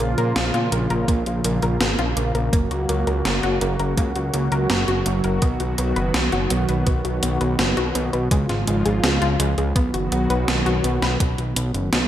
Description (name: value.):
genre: synthwave.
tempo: 83 BPM.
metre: 4/4.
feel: straight.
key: unclear.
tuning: A4 = 442 Hz.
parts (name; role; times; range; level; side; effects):
brassy analog pad; sustained chords; 0.0-12.1 s; Db3 to Gb4; -24 LUFS; equal; chorus, sidechain pumping, shimmer reverb.
analog pluck; arpeggios; 0.0-12.0 s; Ab3 to B4; -27 LUFS; left 1 dB; chorus, tape echo, shimmer reverb.
fat analog bass; bass; 0.0-12.1 s; Gb1 to Bb2; -23 LUFS; equal; sidechain pumping.
gated 80s digital drum machine; drums; 0.0-12.1 s; hi-hat, snare drum; -24 LUFS; equal; gated reverb, gated reverb snare, overdrive.
electronic kick drum; drums; 1.1-11.3 s; none; -21 LUFS; equal; overdrive.
room: light reverb, digital ambience.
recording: none.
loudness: -18 LUFS.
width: side -11 dB against mid.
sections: 0.0-11.2 A section.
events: drum fill 10.5-11.2.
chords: 0.0 Bbm; 2.5 Gb; 5.4 B; 8.3 Db; 9.8 B.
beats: 0.36 1.08 1.81 | 2.53 3.25 3.98 4.70 | 5.42 6.14 6.87 7.59 | 8.31 9.04 9.76 10.48 | 11.21 11.93.